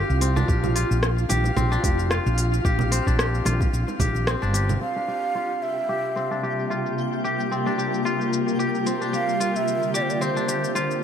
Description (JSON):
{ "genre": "organic downtempo", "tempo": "111 BPM", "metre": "4/4", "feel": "swing 56% on 16ths", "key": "unclear", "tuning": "A4 = 440 Hz", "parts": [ { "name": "kora", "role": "arpeggios", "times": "0.0-11.0 s", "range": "C4 to G4", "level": "-27 LUFS", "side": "left 2 dB", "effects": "low-pass filter, ping-pong delay" }, { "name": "twinkling granular texture", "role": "texture", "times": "0.0-11.0 s", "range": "F4 to G5", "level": "-33 LUFS", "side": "right 2 dB", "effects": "built-in reverb" }, { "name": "woody fretless electric bass", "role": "bass", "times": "0.1-4.8 s", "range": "F1 to C2", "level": "-23 LUFS", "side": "equal", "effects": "sidechain pumping" }, { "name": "organic electronic drum kit", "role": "drums", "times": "0.1-11.0 s", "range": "hi-hat, rim click, shaker", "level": "-30 LUFS", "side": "left 1 dB", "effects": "overdrive, low-pass filter on perc, low-pass filter on hats, low-pass filter on snare, low-pass filter on room" }, { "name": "congas and bongos", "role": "percussion", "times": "0.4-4.8 s", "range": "none", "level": "-30 LUFS", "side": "right 5 dB", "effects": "none" }, { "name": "electronic kick drum", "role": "drums", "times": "0.5-4.1 s", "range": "none", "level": "-24 LUFS", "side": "equal", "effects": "overdrive" }, { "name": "breathy ney", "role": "melody", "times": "4.8-11.0 s", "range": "C5 to F5", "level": "-28 LUFS", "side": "right 3 dB", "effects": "tape echo" }, { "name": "granular cloud pad", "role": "sustained chords", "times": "6.0-11.0 s", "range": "C3 to Bb4", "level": "-26 LUFS", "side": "left 1 dB", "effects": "built-in reverb, sidechain pumping" } ], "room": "light reverb", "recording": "none", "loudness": "-21 LUFS", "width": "side -8 dB against mid", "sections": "0.0-4.8 A section; 4.8-11.0 B section", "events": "filter sweep on drum 4.8-11.0; filter sweep on kora 4.8-11.0", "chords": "0.5 Bb6; 4.8 C7sus4; 9.1 Bb6", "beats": "| 0.49 1.03 1.57 2.11 | 2.65 3.19 3.73 4.27 | 4.81 5.35 5.89 6.43 | 6.97 7.51 8.05 8.60 | 9.13 9.68 10.22 10.76" }